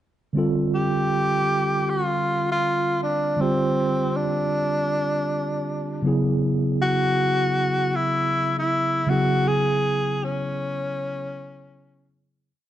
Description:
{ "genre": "R&B", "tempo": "79 BPM", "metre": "4/4", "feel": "swing 63% on 16ths", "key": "unclear", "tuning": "A4 = 441 Hz", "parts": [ { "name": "mellow tine electric piano", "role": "accompaniment", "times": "0.3-12.5 s", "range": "C#3 to A4", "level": "-24 LUFS", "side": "right 1 dB", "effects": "medium stereo tremolo" }, { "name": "breathy tenor saxophone", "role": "melody", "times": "0.7-12.1 s", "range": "C4 to G#4", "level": "-23 LUFS", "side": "equal", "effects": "slapback echo" } ], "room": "light reverb, small room ambience", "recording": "dark, warm production, nothing above 10.7 kHz", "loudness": "-20 LUFS", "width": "side -12 dB against mid", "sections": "0.3-12.5 verse", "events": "fade-out 9.5-12.5", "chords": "0.3 F69/D; 6.0 E69/C#", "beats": "| 0.34 1.10 1.86 2.62 | 3.38 4.14 4.90 5.66 | 6.42 7.18 7.94 8.70 | 9.46 10.21 10.97 11.73" }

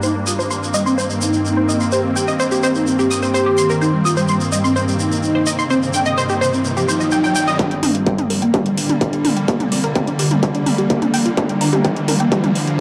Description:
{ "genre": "melodic techno", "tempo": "127 BPM", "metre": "4/4", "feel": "straight", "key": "G minor", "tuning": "A4 = 440 Hz", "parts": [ { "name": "mellow synth brass", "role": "melody", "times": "0.0-12.8 s", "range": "C3 to G4", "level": "-23 LUFS", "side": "equal", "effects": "chorus, sidechain pumping, tape echo" }, { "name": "evolving wavetable pad", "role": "sustained chords", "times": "0.0-12.8 s", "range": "G2 to C4", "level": "-23 LUFS", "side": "equal", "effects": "ensemble chorus, built-in reverb, sidechain pumping" }, { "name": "unison pluck", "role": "arpeggios", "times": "0.0-12.4 s", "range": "D4 to Eb6", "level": "-24 LUFS", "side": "equal", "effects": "phaser, sidechain pumping, tape echo" }, { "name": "tube shaker", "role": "percussion", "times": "0.0-7.6 s", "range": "none", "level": "-28 LUFS", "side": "equal", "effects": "none" }, { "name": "riser", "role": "sound effects", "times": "5.6-12.8 s", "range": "none", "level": "-31 LUFS", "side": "equal", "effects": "none" }, { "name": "deep house drum kit", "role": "drums", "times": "7.6-12.8 s", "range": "hi-hat, toms", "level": "-24 LUFS", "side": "equal", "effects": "overdrive" }, { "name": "electronic kick drum", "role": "drums", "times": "7.6-12.4 s", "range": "none", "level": "-23 LUFS", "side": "equal", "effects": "distortion, high-pass filter on kick, high-pass filter on room" }, { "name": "dark detuned saw bass", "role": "bass", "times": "7.8-12.7 s", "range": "F1 to G1", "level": "-34 LUFS", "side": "equal", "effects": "none" } ], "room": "moderate lush hall reverb, RT60 2.2 s", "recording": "dry, gritty hardware recording, transformer saturation, cassette tape", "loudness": "-17 LUFS", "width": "mono", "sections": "0.0-7.6 A section; 7.6-12.8 B section", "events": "filter sweep on synth pluck 0.0-7.6, 7.6-12.8; riser 5.6-7.6, 7.6-12.8; build-up 7.6-12.8; filter sweep on analog polysynth 7.6-12.8", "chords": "0.0 Cm7/G; 7.6 Gm", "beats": "| 0.03 0.51 0.98 1.45 | 1.92 2.40 2.87 3.34 | 3.81 4.29 4.76 5.23 | 5.70 6.18 6.65 7.12 | 7.59 8.07 8.54 9.01 | 9.48 9.96 10.43 10.90 | 11.37 11.85 12.32 12.79" }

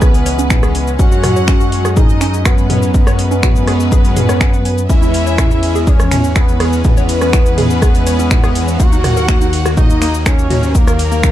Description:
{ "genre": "melodic techno", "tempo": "123 BPM", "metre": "4/4", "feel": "straight", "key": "C# dorian", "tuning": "A4 = 440 Hz", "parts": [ { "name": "wide unison lead", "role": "melody", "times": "0.0-11.3 s", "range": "A#3 to F#4", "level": "-19 LUFS", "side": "equal", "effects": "sidechain pumping, tape echo" }, { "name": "clear studio violin section", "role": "second line", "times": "0.0-11.3 s", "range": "A#4 to F#5", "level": "-25 LUFS", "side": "left 1 dB", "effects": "sidechain pumping, digital delay" }, { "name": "warbly dusty pluck", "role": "arpeggios", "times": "0.0-11.3 s", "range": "A#3 to G#5", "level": "-24 LUFS", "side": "right 1 dB", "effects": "chorus, sidechain pumping, digital delay" }, { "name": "analog synth brass", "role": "stabs", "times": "0.0-11.3 s", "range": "D#3 to C#4", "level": "-22 LUFS", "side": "left 4 dB", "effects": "chorus, sidechain pumping, digital delay" }, { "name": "dark detuned saw bass", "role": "bass", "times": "0.0-11.3 s", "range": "C#2 to F#2", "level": "-17 LUFS", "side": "equal", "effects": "tube saturation, sidechain pumping" }, { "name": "electronic kick drum", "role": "drums", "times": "0.0-11.3 s", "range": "none", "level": "-12 LUFS", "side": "equal", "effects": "none" }, { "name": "techno drum kit", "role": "drums", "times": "0.0-11.3 s", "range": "finger snaps, hi-hat, ride cymbal, rim click, shaker, toms", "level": "-19 LUFS", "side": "equal", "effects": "sidechain pumping on perc, sidechain pumping on hats, sidechain pumping on toms, sidechain pumping on cymbals" } ], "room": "light reverb, digital ambience", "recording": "dark, warm production", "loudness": "-10 LUFS", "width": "side -12 dB against mid", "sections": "0.0-11.3 A section", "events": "none", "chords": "0.0 C#m; 1.0 F#sus2; 4.9 C#m/E; 8.8 D#m", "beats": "0.02 0.51 | 0.99 1.48 1.97 2.46 | 2.94 3.43 3.92 4.41 | 4.89 5.38 5.87 6.36 | 6.85 7.33 7.82 8.31 | 8.80 9.29 9.77 10.26 | 10.75 11.24" }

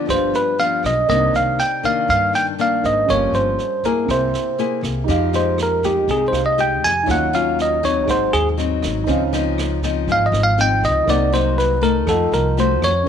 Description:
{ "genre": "bossa nova", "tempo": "120 BPM", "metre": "4/4", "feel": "straight", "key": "C minor, F minor from 5.1 s", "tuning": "A4 = 440 Hz", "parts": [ { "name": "bell-like tine electric piano", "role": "melody", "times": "0.0-13.1 s", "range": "G4 to Ab5", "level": "-18 LUFS", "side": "right 1 dB", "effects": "slapback echo" }, { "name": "dark grand piano", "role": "accompaniment", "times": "0.0-13.1 s", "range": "C4 to Gb5", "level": "-26 LUFS", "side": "right 14 dB", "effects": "none" }, { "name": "nylon-string guitar", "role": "accompaniment", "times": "0.0-13.1 s", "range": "G2 to Ab4", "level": "-22 LUFS", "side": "left 10 dB", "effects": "none" }, { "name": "upright bass", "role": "bass", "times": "0.1-13.0 s", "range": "G1 to G2", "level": "-23 LUFS", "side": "right 1 dB", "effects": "none" }, { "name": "jazz brush drum kit", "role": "drums", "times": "0.1-12.9 s", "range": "kick drum, rim click, snare drum", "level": "-30 LUFS", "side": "right 4 dB", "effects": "none" } ], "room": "light reverb", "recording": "1960s-style stereo with parts hard left and right", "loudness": "-16 LUFS", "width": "side -8 dB against mid", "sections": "0.0-5.1 A section; 5.1-13.1 B section", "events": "tine electric piano solo 5.1-13.1", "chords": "0.1 G7; 1.1 Cm9; 3.1 Gm7b5; 4.1 C7b13; 5.1 Fm9; 7.1 Ebm9; 8.1 Ab7; 9.1 Dbmaj9; 11.1 Cm7b5; 12.1 F7b9", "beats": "0.08 0.58 | 1.08 1.58 2.08 2.58 | 3.08 3.58 4.08 4.58 | 5.08 5.58 6.08 6.58 | 7.08 7.58 8.07 8.57 | 9.07 9.57 10.07 10.57 | 11.07 11.57 12.07 12.57 | 13.07" }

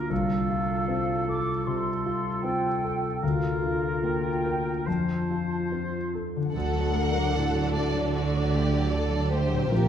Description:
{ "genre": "cinematic, emotional film score for orchestra", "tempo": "70-79 BPM", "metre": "4/4", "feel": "rubato", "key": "unclear", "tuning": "A4 = 440 Hz", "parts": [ { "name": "warm clarinet", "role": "second line", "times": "0.0-6.2 s", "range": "F4", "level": "-33 LUFS", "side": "right 1 dB", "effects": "none" }, { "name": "warm oboe", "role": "second line", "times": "0.0-6.2 s", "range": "A4 to C5", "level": "-34 LUFS", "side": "right 2 dB", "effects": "none" }, { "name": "warm concert grand piano", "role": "accompaniment", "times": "0.0-9.9 s", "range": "Bb1 to Bb4", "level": "-30 LUFS", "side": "equal", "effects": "none" }, { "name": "concert harp", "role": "arpeggios", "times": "0.0-9.9 s", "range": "Bb2 to A5", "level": "-32 LUFS", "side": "left 8 dB", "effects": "none" }, { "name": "mellow flute section", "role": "second line", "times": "0.1-5.7 s", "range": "F5 to D6", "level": "-33 LUFS", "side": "equal", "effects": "none" }, { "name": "warm studio violin section", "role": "melody", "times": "6.5-9.9 s", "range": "Bb4 to F#5", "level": "-31 LUFS", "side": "left 2 dB", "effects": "none" }, { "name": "warm studio violin section", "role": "second line", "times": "6.5-9.9 s", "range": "F#4 to Bb4", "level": "-33 LUFS", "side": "left 2 dB", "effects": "none" }, { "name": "warm studio viola section", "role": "accompaniment", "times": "6.5-9.9 s", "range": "C3 to F4", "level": "-32 LUFS", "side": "right 2 dB", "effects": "none" }, { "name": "rich studio cello section", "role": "bass", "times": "6.5-9.9 s", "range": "Bb2 to D3", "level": "-30 LUFS", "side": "right 2 dB", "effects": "none" }, { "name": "rich studio double bass section", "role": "bass", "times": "6.5-9.9 s", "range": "Bb1 to D2", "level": "-29 LUFS", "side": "right 4 dB", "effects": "none" } ], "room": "wet scoring stage reverb, RT60 1.7 s", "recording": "dark, warm production", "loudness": "-24 LUFS", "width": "side -9 dB against mid", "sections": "0.0-6.5 A section; 6.5-9.9 B section", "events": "none", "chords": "0.1 F/C; 3.2 Bb/D; 4.9 F; 6.5 D", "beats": "| 0.10 0.88 1.66 2.44 | 3.22 4.02 4.86 5.71 | 6.54 7.35 8.14 8.92 | 9.71" }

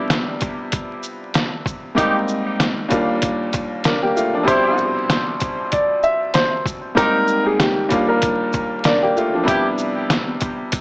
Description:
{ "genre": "hip hop, boom-bap hip-hop", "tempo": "96 BPM", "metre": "4/4", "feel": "swing 56% on 16ths", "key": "C major", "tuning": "A4 = 440 Hz", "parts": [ { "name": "bright upright piano", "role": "accompaniment", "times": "0.0-10.8 s", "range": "Eb2 to Bb4", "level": "-21 LUFS", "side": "equal", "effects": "high-pass filter, low-pass filter" }, { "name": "trip hop sampler-style drum kit", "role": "drums", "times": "0.1-10.8 s", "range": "hi-hat, kick drum, shaker, snare drum", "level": "-21 LUFS", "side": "equal", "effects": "none" }, { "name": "dark horn section", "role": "stabs", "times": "2.0-9.7 s", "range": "C4 to G4", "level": "-25 LUFS", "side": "equal", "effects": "high-pass filter, low-pass filter, tape echo" }, { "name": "warm upright piano", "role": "melody", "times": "4.5-9.1 s", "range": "G4 to E5", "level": "-19 LUFS", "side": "equal", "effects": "high-pass filter, low-pass filter, tape echo" } ], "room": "light reverb, small room ambience", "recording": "vinyl crackle, small speaker sound", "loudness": "-16 LUFS", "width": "side -25 dB against mid", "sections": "0.0-10.8 A section", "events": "none", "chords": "0.0 Cmaj9; 2.0 Abmaj9; 2.9 Ebmaj9; 4.5 Cmaj9; 7.0 Abmaj9; 7.9 Ebmaj9; 9.5 Cmaj9", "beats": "0.10 0.73 1.35 | 1.98 2.60 3.23 3.85 | 4.48 5.10 5.73 6.35 | 6.98 7.60 8.23 8.85 | 9.48 10.10 10.73" }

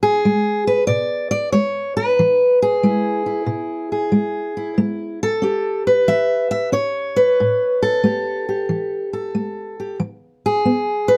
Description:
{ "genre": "acoustic country blues, solo or duo", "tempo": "92 BPM", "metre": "4/4", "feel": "swing 68% on 8ths", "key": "E mixolydian", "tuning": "A4 = 441 Hz", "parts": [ { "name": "fingerpicked steel-string acoustic guitar", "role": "solo", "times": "0.0-11.2 s", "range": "A2 to E5", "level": "-19 LUFS", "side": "equal", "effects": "none" } ], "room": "light reverb", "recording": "close, detailed microphones", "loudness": "-19 LUFS", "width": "mono", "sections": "0.0-11.2 A section", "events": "none", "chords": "0.0 E; 4.8 A7; 10.0 E", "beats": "0.23 0.88 1.53 | 2.18 2.83 3.48 4.14 | 4.79 5.44 6.09 6.74 | 7.39 8.04 8.69 9.34 | 9.99 10.64" }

